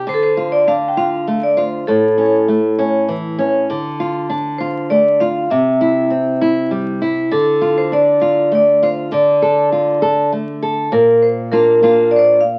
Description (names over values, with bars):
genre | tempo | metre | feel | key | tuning
andean folk | 66 BPM (dotted quarters) | 6/8 | straight | D minor | A4 = 438 Hz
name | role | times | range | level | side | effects
nylon-string guitar | accompaniment | 0.0-12.6 s | A2 to A4 | -20 LUFS | equal | none
vibraphone with medium hard mallets | melody | 0.1-12.6 s | A4 to G5 | -16 LUFS | equal | none
room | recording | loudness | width
moderate club reverb, RT60 0.6 s | very old 78 rpm record, vinyl crackle | -15 LUFS | mono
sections
0.0-10.9 A section; 10.9-12.6 B section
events
none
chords
0.1 Dm; 1.9 A; 3.7 Dm; 5.5 C; 7.3 Dm; 10.9 Bb